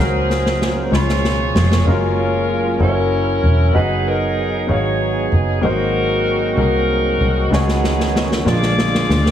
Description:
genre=slow gospel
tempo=64 BPM (dotted quarters)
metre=6/8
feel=straight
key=F# major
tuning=A4 = 440 Hz
part: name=mellow saxophone section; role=melody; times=0.0-9.3 s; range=B3 to D5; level=-20 LUFS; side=left 1 dB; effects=none
part: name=clear baby grand piano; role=accompaniment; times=0.0-9.3 s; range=G#2 to B5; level=-23 LUFS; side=left 3 dB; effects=none
part: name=tonewheel organ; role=sustained chords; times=0.0-9.3 s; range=B2 to G#5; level=-24 LUFS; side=right 4 dB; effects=slow rotary speaker, overdrive, chorus vibrato
part: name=fingered electric bass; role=bass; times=0.0-9.3 s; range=E1 to D2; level=-18 LUFS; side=equal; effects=none
part: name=snare drum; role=drums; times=0.3-1.9, 7.5-9.3 s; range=none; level=-21 LUFS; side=left 1 dB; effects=none
room=light reverb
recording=heavily compressed radio sound, multiband compression, small room ambience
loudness=-14 LUFS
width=side -10 dB against mid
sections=0.0-1.9 A section; 1.9-9.3 B section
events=drum fill 0.0-1.9, 7.5-9.3; tonewheel organ fill 0.9-1.9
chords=0.0 F#/C#; 0.9 C#7; 1.9 F#maj9; 2.8 F#7; 3.8 B6/F#; 5.6 G#9; 7.5 C#9sus4; 8.5 A#7

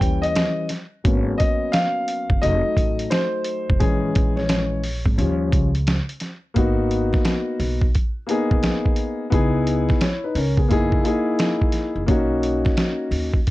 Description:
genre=hip hop, jazz-hop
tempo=87 BPM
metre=4/4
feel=swing 65% on 16ths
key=unclear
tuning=A4 = 440 Hz
part: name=dark baby grand piano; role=accompaniment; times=0.0-13.4 s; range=E3 to G5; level=-22 LUFS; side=left 2 dB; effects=none
part: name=upright bass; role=bass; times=0.0-13.4 s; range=F1 to D#2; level=-24 LUFS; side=equal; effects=none
part: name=lo-fi sampler-style drum kit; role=drums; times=0.0-13.5 s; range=hi-hat, kick drum, snare drum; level=-21 LUFS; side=equal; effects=overdrive, vintage 12-bit sampler grit
room=light reverb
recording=dark, warm production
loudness=-18 LUFS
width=side -17 dB against mid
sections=0.0-6.6 A section; 6.6-13.5 B section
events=grand piano solo 0.0-6.6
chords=0.0 D#7b9; 1.0 G#m11; 2.4 F7b9; 3.8 A#m7b5; 5.2 D#7; 6.6 G#m9; 9.3 C#m9; 10.7 F#13; 12.1 Bmaj7

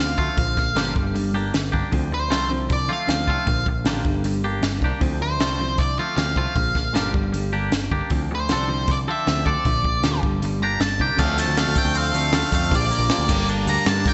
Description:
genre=indie rock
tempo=156 BPM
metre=4/4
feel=straight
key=D minor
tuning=A4 = 440 Hz
part: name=octave-fuzz lead guitar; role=melody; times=0.0-14.1 s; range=C5 to Bb5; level=-27 LUFS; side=equal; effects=distortion, tape echo
part: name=clean electric guitar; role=riff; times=0.0-14.1 s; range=G2 to A4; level=-29 LUFS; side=equal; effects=none
part: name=twangy electric guitar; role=riff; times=0.0-14.1 s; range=F3 to A4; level=-32 LUFS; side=equal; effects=subtle chorus, slapback echo
part: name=overdriven picked electric bass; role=bass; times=0.0-14.1 s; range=G1 to G2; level=-28 LUFS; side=equal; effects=none
part: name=compact cocktail drum kit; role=drums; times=0.2-14.1 s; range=crash cymbal, hi-hat, kick drum, snare drum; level=-27 LUFS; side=equal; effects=none
part: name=egg shaker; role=percussion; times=11.2-14.0 s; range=none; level=-44 LUFS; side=equal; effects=none
room=moderate scoring stage reverb, RT60 1.5 s, small room ambience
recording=big arena sound, nothing above 7.9 kHz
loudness=-22 LUFS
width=mono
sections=0.0-11.2 A section; 11.2-14.1 B section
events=none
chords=0.4 Bb6; 1.0 Gm; 1.9 Dm7; 3.5 Bb6; 4.1 Gm; 5.0 Dm7; 6.6 Bb6; 7.1 Gm; 8.1 Dm7; 9.7 Bb6; 10.2 Gm; 11.2 Dm7; 12.7 Bb6; 13.3 Gm

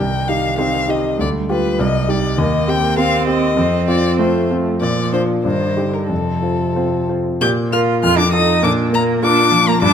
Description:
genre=quick classical-period movement for piano trio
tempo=90-102 BPM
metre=2/4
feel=rubato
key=Bb major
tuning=A4 = 440 Hz
part: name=warm violin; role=melody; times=0.0-9.9 s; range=A4 to G6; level=-20 LUFS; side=left 5 dB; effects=none
part: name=rich cello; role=second line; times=0.0-9.9 s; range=C3 to G4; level=-21 LUFS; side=right 8 dB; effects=none
part: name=clear concert grand piano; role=accompaniment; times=0.0-9.9 s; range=C2 to C5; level=-17 LUFS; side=left 1 dB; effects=none
room=moderate recital hall reverb, RT60 1.4 s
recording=close, detailed microphones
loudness=-14 LUFS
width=side -8 dB against mid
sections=0.0-7.4 A section; 7.4-9.9 B section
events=none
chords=0.0 Cm; 1.2 G7/D; 1.8 Cm; 2.4 Cm7/Eb; 3.6 F; 4.8 Bb; 5.4 Eb/G; 6.1 F; 7.4 Bb5; 8.0 F7; 8.6 Bb5

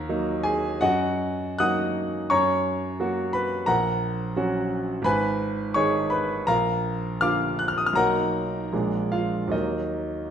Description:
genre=classical, romantic character piece for solo piano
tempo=73-89 BPM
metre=2/4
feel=rubato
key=Eb minor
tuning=A4 = 441 Hz
part: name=clear concert grand piano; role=solo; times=0.0-10.3 s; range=Ab1 to Gb6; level=-22 LUFS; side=equal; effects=none
room=moderate recital hall reverb, RT60 1.4 s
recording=none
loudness=-22 LUFS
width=side -8 dB against mid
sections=0.0-10.3 A section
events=none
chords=0.0 Ebm; 0.8 Ebm/Gb; 2.3 Gb; 3.7 Gb/Bb; 5.1 Abm; 6.5 Bb; 8.0 Bmaj7; 8.7 Bb7; 9.5 Ebm

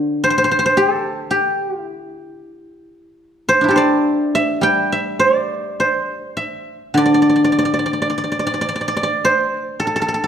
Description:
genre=chinese traditional, Chinese solo plucked strings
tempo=50-58 BPM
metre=2/4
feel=rubato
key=unclear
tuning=A4 = 441 Hz
part: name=guzheng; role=solo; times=0.0-10.3 s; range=D3 to G5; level=-15 LUFS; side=equal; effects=none
room=light reverb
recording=dark, warm production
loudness=-15 LUFS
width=side -8 dB against mid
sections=0.0-10.3 A section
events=none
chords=none

